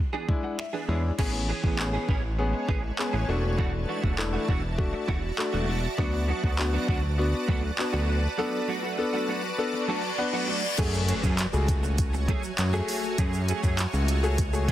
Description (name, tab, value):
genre	dance-pop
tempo	100 BPM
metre	4/4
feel	straight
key	F# minor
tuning	A4 = 440 Hz
part	direct-recorded clean electric guitar	riff	0.0-14.7 s	E3 to G#4	-34 LUFS	right 4 dB	ensemble chorus
part	clear concert grand piano	accompaniment	0.3-14.7 s	G#3 to A5	-31 LUFS	left 3 dB	sidechain pumping
part	smooth R&B drum kit	drums	0.3-14.7 s	crash cymbal, finger snaps, handclaps, hi-hat, kick drum	-29 LUFS	equal	soft clipping on snare
part	fat analog bass	bass	0.9-14.7 s	E1 to F#2	-27 LUFS	equal	sidechain pumping
part	shimmering ambient pad	sustained chords	2.0-14.7 s	G#3 to A5	-34 LUFS	right 1 dB	chorus, built-in reverb, sidechain pumping
part	reverse cymbal and impact	sound effects	9.8-13.2 s	none	-34 LUFS	left 2 dB	none
part	tube shaker	percussion	10.8-14.7 s	none	-43 LUFS	right 8 dB	none
room	light reverb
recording	dense, heavily limited modern master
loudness	-24 LUFS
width	side -13 dB against mid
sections	0.0-1.2 A section; 1.2-10.8 B section; 10.8-14.7 C section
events	grand piano fill 0.0-1.2, 9.6-10.8; reverse cymbal 9.8-10.8; impact 10.8-13.2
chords	0.0 E7; 1.2 Amaj9; 3.3 E9sus4; 6.0 D6; 8.4 Bm7; 10.8 F#madd9